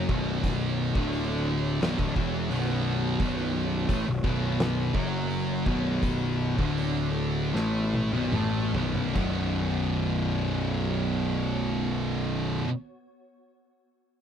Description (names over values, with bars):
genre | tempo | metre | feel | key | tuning
stoner and doom metal | 72-87 BPM | 4/4 | straight | B minor | A4 = 439 Hz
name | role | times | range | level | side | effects
swarming drone | sustained chords | 0.0-12.6 s | B3 to C#5 | -41 LUFS | right 2 dB | none
heavy high-gain guitar | riff | 0.0-12.7 s | B1 to A3 | -34 LUFS | equal | distortion
thick fuzz guitar | riff | 0.0-12.7 s | B1 to A3 | -31 LUFS | left 8 dB | distortion
thick fuzz guitar | riff | 0.0-12.7 s | B1 to A3 | -32 LUFS | right 9 dB | distortion
fuzz picked electric bass | bass | 0.0-12.6 s | B0 to A1 | -31 LUFS | equal | overdrive
oversized low-tuned drum kit | drums | 0.1-9.4 s | crash cymbal, hi-hat, kick drum, snare drum, toms | -31 LUFS | equal | none
room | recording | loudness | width
little or no reverb | dry, close 1970s-style studio recording | -25 LUFS | side -8 dB against mid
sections
0.0-9.2 A section; 9.2-12.5 B section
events
slowing down 3.2-9.2; drum fill 7.5-9.2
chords
0.0 Bm; 9.2 B5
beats
| 0.43 1.12 1.81 2.50 | 3.19 3.89 4.59 5.30 | 6.03 6.78 7.54 8.34 | 9.16 9.99 10.83 11.67